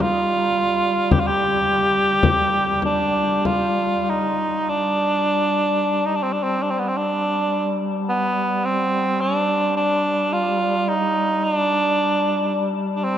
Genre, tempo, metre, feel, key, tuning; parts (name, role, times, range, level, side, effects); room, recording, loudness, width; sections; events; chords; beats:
caucasian folk, Caucasian lament; 46-57 BPM; 3/4; rubato; A4 = 440 Hz
warm cor anglais; melody; 0.0-13.2 s; B3 to G4; -19 LUFS; right 1 dB
warm duduk; drone; 0.0-13.2 s; G3; -25 LUFS; equal
frame drum; percussion; 0.0-3.8 s; -25 LUFS; left 3 dB
wet cathedral reverb, RT60 5.4 s; dark, warm production; -18 LUFS; side -10 dB against mid
0.0-4.7 A section; 4.7-13.2 B section
| 1.11 2.23 3.45 | 4.68 5.84 6.99 | 8.11 9.23 10.35 | 11.45 12.51